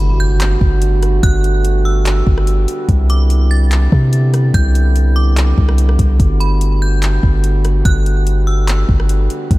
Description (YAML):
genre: hip hop, atmospheric cloud-rap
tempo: 145 BPM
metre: 4/4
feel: half-time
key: G major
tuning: A4 = 440 Hz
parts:
  - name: metallic FM bell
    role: melody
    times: 0.0-9.1 s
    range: B5 to A6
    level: -26 LUFS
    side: right 1 dB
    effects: chorus, tape echo
  - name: mellow brass ensemble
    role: sustained chords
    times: 0.0-9.6 s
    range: D3 to F#4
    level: -22 LUFS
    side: right 2 dB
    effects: none
  - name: concert harp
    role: arpeggios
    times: 0.0-1.4 s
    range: none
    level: barely audible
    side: none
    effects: none
  - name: long sustained 808-style bass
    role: bass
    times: 0.0-9.6 s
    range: G1 to C3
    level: -12 LUFS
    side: equal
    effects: none
  - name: impact and swell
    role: sound effects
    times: 0.0-1.2, 9.5-9.6 s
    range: none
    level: -32 LUFS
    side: equal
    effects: none
  - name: smooth R&B drum kit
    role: drums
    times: 0.4-9.6 s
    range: handclaps, hi-hat, kick drum, rim click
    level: -17 LUFS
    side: equal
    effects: overdrive
room: little or no reverb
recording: none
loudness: -11 LUFS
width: side -19 dB against mid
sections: 0.0-9.6 A section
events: impact 0.0-1.2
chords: 0.0 Gmaj9; 2.9 Cmaj9; 6.2 Gmaj9